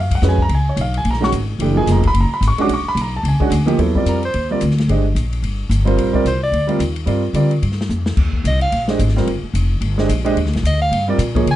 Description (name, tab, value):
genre	modal jazz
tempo	219 BPM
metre	4/4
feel	swing 59% on 8ths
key	F# major, Eb major from 3.8 s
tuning	A4 = 442 Hz
part	warm concert grand piano	accompaniment	0.0-11.5 s	D#3 to D6	-18 LUFS	right 2 dB	none
part	upright bass	bass	0.0-11.6 s	E#1 to D3	-17 LUFS	left 1 dB	none
part	swinging big-band drum kit	drums	0.1-11.5 s	crash cymbal, hi-hat, kick drum, ride cymbal, snare drum	-25 LUFS	left 2 dB	none
part	warm soprano saxophone	melody	4.1-11.6 s	Bb4 to Ab5	-20 LUFS	equal	none
room	little or no reverb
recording	dark, warm production, nothing above 10.9 kHz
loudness	-15 LUFS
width	side -13 dB against mid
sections	0.0-3.8 A section; 3.8-11.6 A section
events	soprano saxophone solo 3.8-11.6; drum fill 7.9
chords	0.0 F#maj9; 2.7 A#7#9; 3.8 Ebmaj9